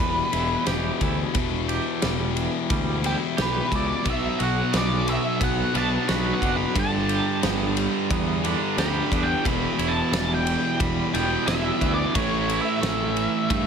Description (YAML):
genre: quiet-loud alternative rock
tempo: 89 BPM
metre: 4/4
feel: straight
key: E minor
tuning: A4 = 440 Hz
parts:
  - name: octave-fuzz lead guitar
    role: melody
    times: 0.0-13.7 s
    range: G4 to B5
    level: -28 LUFS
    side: equal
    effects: distortion, plate reverb
  - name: twangy electric guitar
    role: arpeggios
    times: 0.0-13.7 s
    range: E2 to G4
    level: -30 LUFS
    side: right 8 dB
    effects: tremolo, plate reverb
  - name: thick fuzz guitar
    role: riff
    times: 0.0-13.7 s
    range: E2 to B3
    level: -28 LUFS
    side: left 14 dB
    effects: distortion
  - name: fuzz picked electric bass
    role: bass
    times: 0.0-13.7 s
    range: E1 to G2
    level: -28 LUFS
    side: equal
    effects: overdrive
  - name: big rock drum kit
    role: drums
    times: 0.3-13.7 s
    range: kick drum, ride cymbal, snare drum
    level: -28 LUFS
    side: equal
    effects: none
  - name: fuzz guitar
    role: riff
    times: 4.1-13.7 s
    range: E2 to B3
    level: -28 LUFS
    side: right 12 dB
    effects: distortion
room: light reverb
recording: none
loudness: -21 LUFS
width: side -6 dB against mid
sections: 0.0-13.7 A section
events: lead electric guitar solo 0.0-13.7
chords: 0.0 Em; 4.1 Bm; 6.8 G; 9.5 Em; 12.2 A